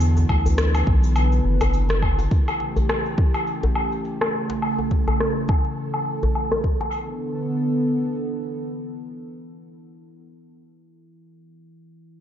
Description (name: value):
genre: organic downtempo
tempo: 104 BPM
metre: 4/4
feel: swing 57% on 16ths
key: B minor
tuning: A4 = 440 Hz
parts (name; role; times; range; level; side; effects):
- warm analog pad; sustained chords; 0.0-10.0 s; C#3 to B4; -26 LUFS; right 1 dB; chorus, sidechain pumping
- round analog bass; bass; 0.0-2.3 s; F#1 to E2; -19 LUFS; equal; none
- electronic cabasa, woodblock and rim click; drums; 0.0-6.9 s; none; -26 LUFS; left 1 dB; low-pass filter on perc, low-pass filter on hats, low-pass filter on snare, low-pass filter on room
- quartz singing bowl; texture; 0.0-6.9 s; E3 to E4; -36 LUFS; left 1 dB; none
- djembe; percussion; 0.2-6.9 s; none; -27 LUFS; left 1 dB; none
- electronic kick drum; drums; 0.3-6.8 s; none; -20 LUFS; equal; none
room: light reverb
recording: dark, warm production, nothing above 7.7 kHz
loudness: -19 LUFS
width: side -10 dB against mid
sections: 0.0-6.9 A section; 6.9-9.2 B section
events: filter sweep on drum 0.0-6.9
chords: 0.0 Bm; 2.3 A7; 6.9 Bm7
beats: | 0.01 0.58 1.16 1.74 | 2.31 2.89 3.47 4.04 | 4.62 5.20 5.78 6.35 | 6.93 7.51 8.08 8.66